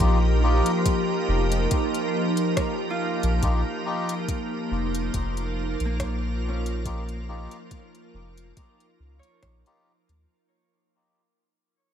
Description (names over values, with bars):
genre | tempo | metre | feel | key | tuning
ambient dub | 70 BPM | 4/4 | swing 55% on 16ths | unclear | A4 = 439 Hz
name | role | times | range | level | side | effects
soft additive organ-like pad | sustained chords | 0.0-10.3 s | F3 to Bb4 | -26 LUFS | right 1 dB | ensemble chorus, built-in reverb
Celtic harp | arpeggios | 0.0-11.1 s | Bb3 to C6 | -38 LUFS | right 2 dB | dub echo
melodica | stabs | 0.0-9.9 s | Eb4 to G4 | -33 LUFS | left 3 dB | dub echo
soft dub sub bass | bass | 0.0-10.3 s | F1 to Eb2 | -25 LUFS | equal | none
electronic kick drum | drums | 0.0-9.6 s | none | -27 LUFS | equal | overdrive, studio ambience
organic electronic drum kit | drums | 0.0-10.2 s | hi-hat, rim click | -33 LUFS | left 2 dB | overdrive, studio ambience, dub echo
room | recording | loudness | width
little or no reverb | echo-heavy mix | -23 LUFS | side -9 dB against mid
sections
0.0-10.3 A section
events
fade-out 1.1-10.3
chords
0.0 Ebadd9